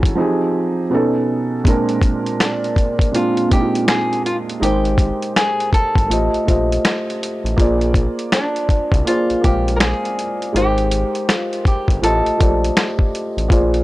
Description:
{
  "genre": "lo-fi hip hop",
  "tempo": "81 BPM",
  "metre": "4/4",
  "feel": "swing 63% on 16ths",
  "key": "unclear",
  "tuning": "A4 = 442 Hz",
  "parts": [
    { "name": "nylon-string guitar", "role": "melody", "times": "0.0-13.1 s", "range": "D4 to Bb4", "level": "-22 LUFS", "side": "equal", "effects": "low-pass filter" },
    { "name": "felt-muted upright piano", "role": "accompaniment", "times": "0.0-13.8 s", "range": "Bb2 to F5", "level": "-19 LUFS", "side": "right 1 dB", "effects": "low-pass filter" },
    { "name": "round analog bass", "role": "bass", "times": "0.0-0.1, 4.6-13.8 s", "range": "G1 to C2", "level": "-21 LUFS", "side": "equal", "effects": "none" },
    { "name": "lo-fi sampler-style drum kit", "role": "drums", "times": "0.0-13.8 s", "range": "finger snaps, hi-hat, kick drum, snare drum", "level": "-17 LUFS", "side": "equal", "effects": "none" }
  ],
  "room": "little or no reverb",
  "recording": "dry, gritty hardware recording, transformer saturation",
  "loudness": "-15 LUFS",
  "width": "side -17 dB against mid",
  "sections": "0.0-1.7 A section; 1.7-13.8 B section",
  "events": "none",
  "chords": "0.2 Fm9; 0.9 B9; 1.7 Bb9; 4.6 Abmaj9; 6.1 F9/A; 7.6 Bb9; 10.5 Abmaj9; 12.0 F9/A",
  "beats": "0.17 0.91 | 1.65 2.39 3.13 3.87 | 4.61 5.36 6.09 6.84 | 7.58 8.32 9.06 9.80 | 10.54 11.28 12.02 12.76 | 13.50"
}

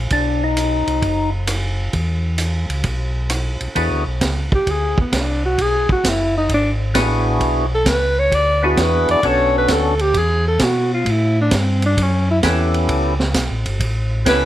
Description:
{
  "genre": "soul jazz organ trio",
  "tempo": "132 BPM",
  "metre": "4/4",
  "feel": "swing 68% on 8ths",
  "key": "E mixolydian",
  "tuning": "A4 = 440 Hz",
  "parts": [
    { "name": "mellow tonewheel organ", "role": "bass", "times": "0.0-14.4 s", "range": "F#1 to B2", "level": "-20 LUFS", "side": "equal", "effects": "slow rotary speaker" },
    { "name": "percussive tonewheel organ", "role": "melody", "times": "0.1-4.0, 6.9-14.4 s", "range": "B3 to A4", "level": "-19 LUFS", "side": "left 2 dB", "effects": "slow rotary speaker, overdrive" },
    { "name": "vintage drum kit", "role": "drums", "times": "0.1-14.4 s", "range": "hi-hat, kick drum, ride cymbal, rim click, snare drum", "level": "-22 LUFS", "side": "right 2 dB", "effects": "none" },
    { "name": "breathy alto saxophone", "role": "melody", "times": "4.5-14.4 s", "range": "B3 to D5", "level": "-18 LUFS", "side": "equal", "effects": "none" }
  ],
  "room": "light reverb",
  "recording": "none",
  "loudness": "-15 LUFS",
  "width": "side -13 dB against mid",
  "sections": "0.0-3.8 A section; 3.8-14.4 B section",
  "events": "alto saxophone solo 3.8-14.4",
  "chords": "0.1 B; 1.9 C#m; 2.8 N.C.; 3.8 E7; 9.2 Bm7; 10.2 E5; 11.1 A7",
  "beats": "| 0.12 0.57 1.03 1.48 | 1.94 2.39 2.85 3.31 | 3.76 4.22 4.67 5.13 | 5.58 6.04 6.50 6.95 | 7.41 7.87 8.32 8.78 | 9.23 9.69 10.15 10.61 | 11.06 11.52 11.98 12.44 | 12.89 13.35 13.81 14.27"
}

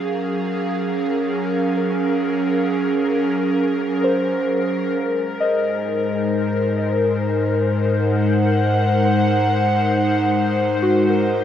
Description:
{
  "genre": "ambient",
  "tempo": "66 BPM",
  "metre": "4/4",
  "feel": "straight",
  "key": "unclear",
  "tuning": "A4 = 440 Hz",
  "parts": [
    { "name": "airy breathy pad", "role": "sustained chords", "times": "0.0-11.4 s", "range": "Gb3 to Gb5", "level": "-18 LUFS", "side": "equal", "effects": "chorus" },
    { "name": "muted felt-like synth keys", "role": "arpeggios", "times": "0.0-11.4 s", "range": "Gb4 to Eb5", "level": "-26 LUFS", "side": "equal", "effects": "chorus, tape echo" },
    { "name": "round analog bass", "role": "bass", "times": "5.0-11.4 s", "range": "Ab2", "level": "-23 LUFS", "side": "equal", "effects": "none" }
  ],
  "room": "wet plate reverb, RT60 2.7 s",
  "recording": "dreamy mix soaked in reverb",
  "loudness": "-17 LUFS",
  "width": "side -10 dB against mid",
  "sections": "0.0-5.0 A section; 5.0-11.4 B section",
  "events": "none",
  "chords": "0.0 Gbmaj7; 5.0 Ab7",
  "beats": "0.42 | 1.32 2.23 3.14 4.05 | 4.97 5.89 6.80 7.70 | 8.61 9.51 10.40 11.30"
}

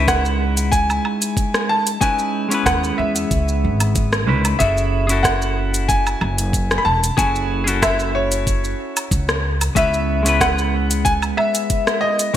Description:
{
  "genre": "sunset chillout",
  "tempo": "93 BPM",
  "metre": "4/4",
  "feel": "straight",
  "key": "C# minor",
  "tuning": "A4 = 440 Hz",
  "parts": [
    { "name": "clear concert grand piano", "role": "melody", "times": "0.0-12.4 s", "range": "C#5 to B5", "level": "-21 LUFS", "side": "left 1 dB", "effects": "ping-pong delay" },
    { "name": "semi-hollow electric guitar", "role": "accompaniment", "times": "0.0-12.4 s", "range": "G#3 to B4", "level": "-23 LUFS", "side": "equal", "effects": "auto-pan, ping-pong delay" },
    { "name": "upright bass", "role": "bass", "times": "0.0-11.3 s", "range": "E1 to E2", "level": "-21 LUFS", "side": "equal", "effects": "none" },
    { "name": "electronic kick drum", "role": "drums", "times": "0.1-12.4 s", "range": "none", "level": "-22 LUFS", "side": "equal", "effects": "studio ambience" },
    { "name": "smooth R&B drum kit", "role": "drums", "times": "0.1-12.3 s", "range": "hi-hat, rim click, shaker, woodblock", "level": "-22 LUFS", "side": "equal", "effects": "studio ambience, gated reverb" }
  ],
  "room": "light reverb",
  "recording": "bright 1980s-style digital production",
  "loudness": "-16 LUFS",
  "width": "side -11 dB against mid",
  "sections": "0.0-12.4 A section",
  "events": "none",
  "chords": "0.0 C#m9; 4.6 F#m9; 9.8 C#m7",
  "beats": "0.09 0.73 1.38 | 2.02 2.67 3.31 3.96 | 4.60 5.25 5.89 6.54 | 7.18 7.83 8.47 9.12 | 9.77 10.41 11.06 11.70 | 12.35"
}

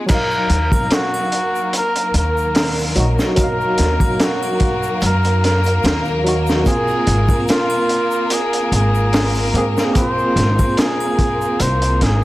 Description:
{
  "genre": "trip hop",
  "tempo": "73 BPM",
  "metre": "4/4",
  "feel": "swing 54% on 16ths",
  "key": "Eb dorian",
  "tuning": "A4 = 440 Hz",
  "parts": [
    { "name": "barky tine electric piano", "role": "accompaniment", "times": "0.0-12.2 s", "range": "Gb3 to F5", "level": "-23 LUFS", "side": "right 1 dB", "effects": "overdrive, tremolo, vintage 12-bit sampler grit, tape echo" },
    { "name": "rich studio violin section", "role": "sustained chords", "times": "0.0-12.2 s", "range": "Ab3 to Bb4", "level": "-23 LUFS", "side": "left 1 dB", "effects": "none" },
    { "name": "trumpet with cup mute", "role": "melody", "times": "0.1-12.2 s", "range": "F4 to C5", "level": "-21 LUFS", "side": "equal", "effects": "tape echo" },
    { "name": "crunchy breakbeat drum kit", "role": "drums", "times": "0.1-12.2 s", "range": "crash cymbal, hi-hat, kick drum, snare drum", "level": "-19 LUFS", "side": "equal", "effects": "low-pass filter on kick, low-pass filter on hats, low-pass filter on cymbals, low-pass filter on snare, low-pass filter on room" },
    { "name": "egg shaker and triangle", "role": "percussion", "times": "0.1-12.0 s", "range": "none", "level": "-37 LUFS", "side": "right 1 dB", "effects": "none" },
    { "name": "upright bass", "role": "bass", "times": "0.5-12.2 s", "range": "Ab1 to Ab2", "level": "-18 LUFS", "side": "equal", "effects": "none" }
  ],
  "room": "light reverb, small room ambience",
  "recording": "blown-out, overdriven recording, vinyl crackle, overdrive",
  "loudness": "-14 LUFS",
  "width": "side -17 dB against mid",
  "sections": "0.1-12.2 A section",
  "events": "none",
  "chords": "0.1 Ebmadd9; 6.7 Ab6",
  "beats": "| 0.09 0.91 1.74 2.56 | 3.38 4.20 5.02 5.84 | 6.67 7.49 8.31 9.13 | 9.95 10.78 11.60"
}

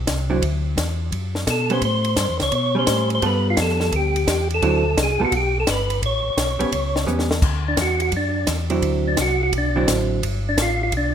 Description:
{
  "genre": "soul jazz organ trio",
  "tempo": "171 BPM",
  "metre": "4/4",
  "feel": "swing 65% on 8ths",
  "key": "D mixolydian",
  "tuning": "A4 = 440 Hz",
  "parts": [
    { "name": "mellow tonewheel organ", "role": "bass", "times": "0.0-11.1 s", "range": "G1 to B2", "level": "-23 LUFS", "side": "left 1 dB", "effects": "slow rotary speaker" },
    { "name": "compact cocktail drum kit", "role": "drums", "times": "0.1-11.0 s", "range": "crash cymbal, hi-hat, kick drum, ride cymbal, snare drum", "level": "-25 LUFS", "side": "left 1 dB", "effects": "none" },
    { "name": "vintage hollow-body jazz guitar", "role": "accompaniment", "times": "0.3-10.2 s", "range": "D3 to A4", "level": "-24 LUFS", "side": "right 3 dB", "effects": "none" },
    { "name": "percussive tonewheel organ", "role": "melody", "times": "1.5-11.1 s", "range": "D4 to C#5", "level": "-22 LUFS", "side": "equal", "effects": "chorus vibrato, fast rotary speaker" }
  ],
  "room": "light reverb",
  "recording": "minimal, uncompressed stereo recording",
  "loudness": "-18 LUFS",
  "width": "side -8 dB against mid",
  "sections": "0.0-7.4 A section; 7.4-11.1 B section",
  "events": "drum fill 7.1-7.4; tonewheel organ solo 7.4-11.1",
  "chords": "0.0 D9; 1.8 A9; 3.2 G9; 4.6 D9; 5.3 G; 6.0 A9; 7.4 D9; 10.2 Gadd9",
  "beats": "0.07 | 0.42 0.77 1.12 1.47 | 1.82 2.17 2.52 2.87 | 3.22 3.57 3.92 4.27 | 4.62 4.97 5.32 5.67 | 6.02 6.37 6.72 7.07 | 7.42 7.77 8.12 8.47 | 8.82 9.17 9.52 9.87 | 10.22 10.57 10.92"
}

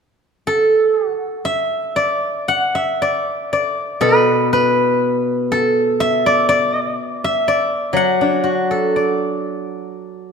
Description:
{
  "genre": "chinese traditional, Chinese solo plucked strings",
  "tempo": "58-63 BPM",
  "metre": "2/4",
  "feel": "rubato",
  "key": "D gong mode",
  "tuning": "A4 = 438 Hz",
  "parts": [
    { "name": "steel-string zither", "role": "solo", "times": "0.5-10.3 s", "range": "B2 to F#5", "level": "-15 LUFS", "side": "equal", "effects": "none" }
  ],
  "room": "moderate scoring stage reverb, RT60 2.2 s",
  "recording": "minimal, uncompressed stereo recording",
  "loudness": "-15 LUFS",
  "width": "side -6 dB against mid",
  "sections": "0.0-2.0 A section; 2.0-10.3 B section",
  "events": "none",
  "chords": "none",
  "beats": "0.97 | 1.97 3.01 | 4.03 5.03 | 6.01 6.98 | 7.95 8.94 | 9.97"
}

